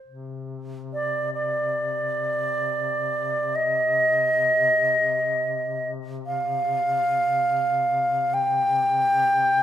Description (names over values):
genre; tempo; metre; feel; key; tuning
caucasian folk, Caucasian lament; free time; none; none; C minor; A4 = 445 Hz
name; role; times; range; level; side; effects
mellow duduk; drone; 0.1-9.6 s; C3; -34 LUFS; left 6 dB; none
bright baroque flute; melody; 0.9-9.6 s; D5 to G5; -21 LUFS; equal; none
room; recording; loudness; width
moderate scoring stage reverb, RT60 1.7 s; minimal, uncompressed stereo recording; -21 LUFS; side -11 dB against mid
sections
0.0-9.6 A section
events
none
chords
none